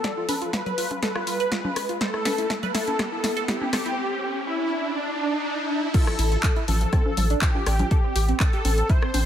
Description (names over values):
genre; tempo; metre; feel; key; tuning
progressive house; 122 BPM; 4/4; straight; unclear; A4 = 439 Hz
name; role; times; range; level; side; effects
wide unison lead; melody; 0.0-9.3 s; D4 to C5; -27 LUFS; left 1 dB; ensemble chorus, sidechain pumping, dub echo
tight sequenced synth; arpeggios; 0.0-9.2 s; F3 to D5; -31 LUFS; right 2 dB; chorus, phaser, sidechain pumping, digital delay
electronic kick drum; drums; 0.0-9.0 s; none; -22 LUFS; equal; high-pass filter on kick
house drum kit; drums; 0.0-9.2 s; crash cymbal, handclaps, hi-hat, snare drum; -29 LUFS; equal; none
riser; sound effects; 0.0-5.9 s; none; -32 LUFS; right 1 dB; none
electronic congas and rim click; percussion; 0.3-9.2 s; none; -31 LUFS; left 2 dB; sidechain pumping on perc, sidechain pumping on snare
round analog bass; bass; 6.2-9.3 s; A1; -22 LUFS; equal; sidechain pumping
room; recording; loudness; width
light reverb; none; -21 LUFS; side -10 dB against mid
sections
0.0-5.9 A section; 5.9-9.3 B section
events
build-up 0.0-5.9; drum fill 0.0-4.0; riser 0.0-5.9; filter sweep on analog synth lead 0.0-5.9; drop 5.9-9.3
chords
0.0 B7(b5, no3); 2.0 N.C.; 5.9 F/A